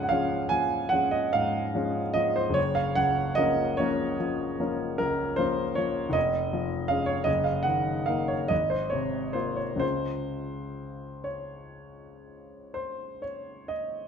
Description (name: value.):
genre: classical, romantic nocturne for solo piano.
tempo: 40-55 BPM (dotted quarters).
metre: 9/8.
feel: rubato.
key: Db major.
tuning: A4 = 441 Hz.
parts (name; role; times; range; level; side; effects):
warm grand piano; solo; 0.0-14.1 s; F1 to Ab5; -26 LUFS; equal; none.
room: wet large studio reverb, RT60 1.3 s.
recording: none.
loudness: -25 LUFS.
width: side -7 dB against mid.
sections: 0.0-14.1 A section.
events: none.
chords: 0.0 Db; 2.6 Gbmaj7; 6.2 Db/F; 7.3 Ebm/Gb; 8.5 Ab69; 9.8 Db.